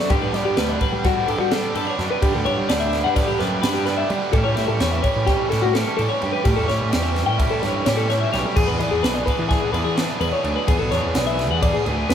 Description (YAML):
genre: math rock and midwest emo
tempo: 255 BPM (eighths)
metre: 9/8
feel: straight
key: unclear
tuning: A4 = 440 Hz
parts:
  - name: twangy electric guitar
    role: accompaniment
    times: 0.0-2.2 s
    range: F#2 to D3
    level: -37 LUFS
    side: right 6 dB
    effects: none
  - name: twelve-string electric guitar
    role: arpeggios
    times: 0.0-12.1 s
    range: F#4 to G5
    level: -23 LUFS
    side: left 3 dB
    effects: none
  - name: biting overdriven guitar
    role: riff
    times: 0.0-12.1 s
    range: G2 to G#4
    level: -24 LUFS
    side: right 2 dB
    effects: none
  - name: fuzz picked electric bass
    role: bass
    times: 0.1-12.1 s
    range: B1 to G3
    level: -25 LUFS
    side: right 1 dB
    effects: overdrive
  - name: crisp fusion drum kit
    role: drums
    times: 0.1-12.1 s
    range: crash cymbal, kick drum, ride cymbal, snare drum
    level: -24 LUFS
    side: equal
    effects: none
room: light reverb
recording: band playing live in one room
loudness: -18 LUFS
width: side -8 dB against mid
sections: 0.1-12.1 A section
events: none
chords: 0.1 Gmaj9; 4.3 A7; 8.6 E7